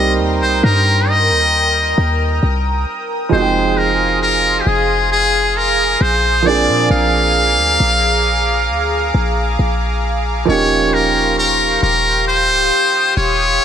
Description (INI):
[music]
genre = contemporary R&B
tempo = 67 BPM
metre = 4/4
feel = straight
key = F minor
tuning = A4 = 440 Hz
[part]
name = trumpet with metal mute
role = melody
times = 0.0-13.6 s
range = G4 to F5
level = -15 LUFS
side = equal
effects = ping-pong delay
[part]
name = warm grand piano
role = accompaniment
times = 0.0-13.6 s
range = F3 to G5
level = -20 LUFS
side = right 6 dB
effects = none
[part]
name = lush unison pad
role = sustained chords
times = 0.1-13.6 s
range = G4 to Eb6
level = -20 LUFS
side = left 1 dB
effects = chorus
[part]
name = warm 808-style bass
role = bass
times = 0.0-13.6 s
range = Db1 to Bb2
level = -19 LUFS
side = left 1 dB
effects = none
[sound]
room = light reverb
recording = none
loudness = -12 LUFS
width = side -8 dB against mid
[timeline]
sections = 0.0-13.6 A section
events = none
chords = 0.0 Cm7; 3.3 Fm7; 6.5 Bb7; 10.5 Eb13